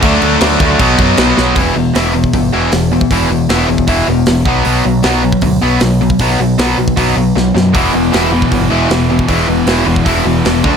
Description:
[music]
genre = punk rock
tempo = 155 BPM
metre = 4/4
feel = straight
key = unclear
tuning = A4 = 440 Hz
[part]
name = distorted electric guitar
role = riff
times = 0.0-10.8 s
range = B2 to E4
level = -15 LUFS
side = left 12 dB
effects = overdrive
[part]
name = distorted electric guitar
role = riff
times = 0.0-10.8 s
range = E2 to D4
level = -15 LUFS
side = right 10 dB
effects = overdrive
[part]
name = tight distorted guitar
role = riff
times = 0.0-1.6, 7.7-10.8 s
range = E2 to D4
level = -16 LUFS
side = right 2 dB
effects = distortion
[part]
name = growling picked electric bass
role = bass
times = 0.0-10.8 s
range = E1 to F#2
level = -17 LUFS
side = equal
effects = overdrive
[part]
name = tight metal drum kit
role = drums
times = 0.0-10.7 s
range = crash cymbal, hi-hat, kick drum, snare drum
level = -17 LUFS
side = equal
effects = none
[sound]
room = light reverb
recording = none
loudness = -9 LUFS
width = side -7 dB against mid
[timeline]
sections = 0.0-1.6 A section; 1.6-10.8 B section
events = drum fill 1.4, 7.4-7.7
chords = 0.0 D; 0.8 B; 1.6 E5; 4.5 B5; 7.7 E5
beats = | 0.03 0.41 0.79 1.18 | 1.56 1.95 2.33 2.72 | 3.11 3.49 3.88 4.27 | 4.65 5.04 5.43 5.81 | 6.20 6.58 6.97 7.36 | 7.74 8.13 8.52 8.90 | 9.29 9.68 10.06 10.45

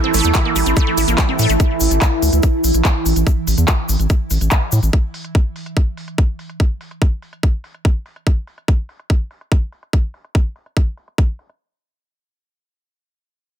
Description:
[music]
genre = psychedelic trance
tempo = 144 BPM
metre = 4/4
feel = straight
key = unclear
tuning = A4 = 439 Hz
[part]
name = overtone-sweeping drone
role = sustained chords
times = 0.0-4.9 s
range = E3 to E4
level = -22 LUFS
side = right 2 dB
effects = chorus, built-in reverb, sidechain pumping
[part]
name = wide unison pluck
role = riff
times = 0.0-1.5 s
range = G3 to E4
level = -22 LUFS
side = moving between left 4 dB and right 5 dB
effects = auto-pan, sidechain pumping, dub echo
[part]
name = ethereal airy pad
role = texture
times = 0.0-1.6 s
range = E4 to E6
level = -24 LUFS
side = right 5 dB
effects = ensemble chorus, built-in reverb, sidechain pumping
[part]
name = round analog bass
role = bass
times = 0.1-4.9 s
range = A1 to A2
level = -16 LUFS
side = equal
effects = none
[part]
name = techno drum kit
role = drums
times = 0.1-11.6 s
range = handclaps, hi-hat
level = -23 LUFS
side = left 1 dB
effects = overdrive, low-pass filter on hats, low-pass filter on snare
[part]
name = egg shaker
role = percussion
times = 0.1-4.9 s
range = none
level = -27 LUFS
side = left 5 dB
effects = none
[part]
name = electronic kick drum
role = drums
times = 0.3-11.3 s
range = none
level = -15 LUFS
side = equal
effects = overdrive
[sound]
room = digital ambience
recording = dense, heavily limited modern master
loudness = -15 LUFS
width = side -9 dB against mid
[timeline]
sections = 0.0-11.6 A section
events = filter sweep on drum 0.0-11.6; filter sweep on synth drone 0.0-4.9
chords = 0.0 A5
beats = 0.35 0.77 1.18 | 1.60 2.02 2.43 2.85 | 3.27 3.68 4.10 4.52 | 4.93 5.35 5.77 6.18 | 6.60 7.02 7.43 7.85 | 8.27 8.68 9.10 9.52 | 9.93 10.35 10.77 11.18

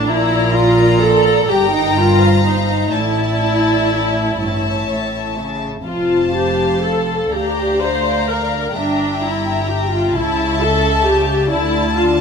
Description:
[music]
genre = classical, slow romantic movement for string orchestra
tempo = 40-44 BPM (dotted quarters)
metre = 6/8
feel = rubato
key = unclear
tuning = A4 = 438 Hz
[part]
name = warm studio violin section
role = melody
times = 0.0-12.2 s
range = A5 to Bb5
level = -23 LUFS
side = left 5 dB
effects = none
[part]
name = dark studio violin section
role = second line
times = 0.0-12.2 s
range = Bb4 to A5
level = -22 LUFS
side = left 3 dB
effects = none
[part]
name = dark studio viola section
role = accompaniment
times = 0.0-12.2 s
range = D4 to C5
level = -17 LUFS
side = equal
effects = none
[part]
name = dark studio cello section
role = bass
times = 0.0-12.2 s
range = D2 to D3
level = -22 LUFS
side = right 2 dB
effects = none
[part]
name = dark studio double bass section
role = bass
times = 0.0-12.2 s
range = F1 to D2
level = -23 LUFS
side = right 2 dB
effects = none
[sound]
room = light reverb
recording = close, detailed microphones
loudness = -14 LUFS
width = side -6 dB against mid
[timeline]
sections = 0.0-12.2 A section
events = none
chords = 0.1 Bb; 1.5 Eb69/G; 2.9 Asus4; 4.4 A; 5.9 F; 7.3 Bb/D; 8.8 Edim/G; 10.1 A/C#; 11.5 D5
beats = | 0.09 1.49 | 2.93 4.39 | 5.86 7.33 | 8.76 10.14 | 11.51

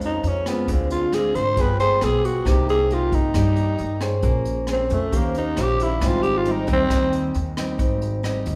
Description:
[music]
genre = bossa nova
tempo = 135 BPM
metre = 4/4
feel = straight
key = Ab major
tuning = A4 = 441 Hz
[part]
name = nylon-string guitar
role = accompaniment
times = 0.0-8.6 s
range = F2 to C5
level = -29 LUFS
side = equal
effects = none
[part]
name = vibraphone with medium hard mallets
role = accompaniment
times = 0.0-8.6 s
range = Db4 to Ab5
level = -35 LUFS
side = equal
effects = none
[part]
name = upright bass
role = bass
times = 0.0-8.6 s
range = G1 to Ab2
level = -27 LUFS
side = equal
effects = none
[part]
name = jazz brush drum kit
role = drums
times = 0.0-8.6 s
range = hi-hat, kick drum, rim click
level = -28 LUFS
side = equal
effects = none
[part]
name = growling tenor saxophone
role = melody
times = 0.1-7.3 s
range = A3 to C5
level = -24 LUFS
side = equal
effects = none
[sound]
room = moderate recital hall reverb, RT60 1.3 s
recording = recorded in a church or concert hall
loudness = -21 LUFS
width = mono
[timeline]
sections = 0.0-8.6 A section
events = tenor saxophone solo 0.0-8.6; vibraphone fill 8.2-8.6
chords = 0.0 Bbm7; 0.7 Dm7b5; 1.6 G7b9; 2.5 Cm7; 4.2 Bbm9; 5.1 Eb13; 6.0 Abmaj7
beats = 0.24 | 0.68 1.13 1.57 2.02 | 2.46 2.90 3.35 3.79 | 4.24 4.68 5.13 5.57 | 6.02 6.46 6.91 7.35 | 7.80 8.24

